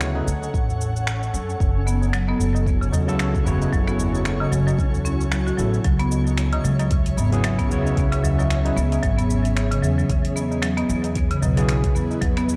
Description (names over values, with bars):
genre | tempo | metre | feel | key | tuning
organic downtempo | 113 BPM | 4/4 | swing 57% on 16ths | F# minor | A4 = 440 Hz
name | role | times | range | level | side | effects
overdriven tine electric piano | accompaniment | 0.0-11.9 s | C#3 to C#5 | -32 LUFS | equal | sidechain pumping, tape echo
ethereal airy pad | sustained chords | 0.0-12.6 s | C#4 to F#5 | -33 LUFS | equal | ensemble chorus, built-in reverb, sidechain pumping
upright bass | bass | 0.0-12.6 s | F#1 to F#2 | -25 LUFS | equal | sidechain pumping
afro-pop drum kit | drums | 0.0-12.6 s | finger snaps, hi-hat, shaker | -34 LUFS | equal | studio reverb
twinkling granular texture | texture | 0.0-12.6 s | C#4 to C#5 | -39 LUFS | equal | built-in reverb
tabla | percussion | 0.2-12.6 s | none | -33 LUFS | equal | none
electronic kick drum | drums | 0.5-12.3 s | none | -25 LUFS | equal | studio reverb
marimba with hard mallets | arpeggios | 1.9-12.5 s | C#3 to F#4 | -26 LUFS | equal | tape echo
room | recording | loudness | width
light reverb | dark, warm production | -21 LUFS | mono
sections
0.0-12.6 A section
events
none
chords
0.0 Dmaj7; 1.6 F#m7; 5.8 C#m7; 10.1 E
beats
0.01 0.54 1.07 | 1.60 2.13 2.66 3.19 | 3.73 4.26 4.79 5.32 | 5.85 6.38 6.91 7.44 | 7.97 8.50 9.04 9.57 | 10.10 10.63 11.16 11.69 | 12.22